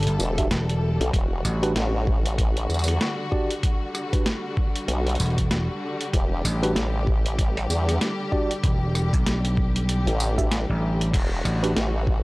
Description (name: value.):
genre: glitch hop.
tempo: 96 BPM.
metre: 4/4.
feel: swing 59% on 16ths.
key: E minor.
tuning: A4 = 441 Hz.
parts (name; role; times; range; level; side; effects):
rich studio string section; sustained chords; 0.0-12.2 s; D3 to A4; -31 LUFS; left 1 dB; vintage 12-bit sampler grit, sidechain pumping.
vintage slap bass; bass; 0.0-11.7 s; E1 to B1; -23 LUFS; equal; none.
boom bap sampler-style drum kit; drums; 0.0-11.9 s; crash cymbal, hi-hat, rim click, snare drum, tambourine; -29 LUFS; equal; overdrive.
formant-sweep wobble bass; bass; 0.2-12.2 s; E1 to E2; -24 LUFS; equal; chorus, tube saturation.
mellow tine electric piano; stabs; 0.4-11.7 s; D4 to E5; -29 LUFS; right 1 dB; medium stereo tremolo, sidechain pumping, analog delay.
electronic kick drum; drums; 0.4-12.2 s; none; -23 LUFS; equal; overdrive.
room: little or no reverb.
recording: dry, gritty hardware recording, transformer saturation, cassette tape.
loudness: -21 LUFS.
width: side -22 dB against mid.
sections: 0.0-12.2 A section.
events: none.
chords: 0.0 Em9.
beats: 0.51 | 1.14 1.76 2.38 3.01 | 3.63 4.26 4.88 5.51 | 6.13 6.76 7.38 8.01 | 8.63 9.26 9.88 10.51 | 11.13 11.76.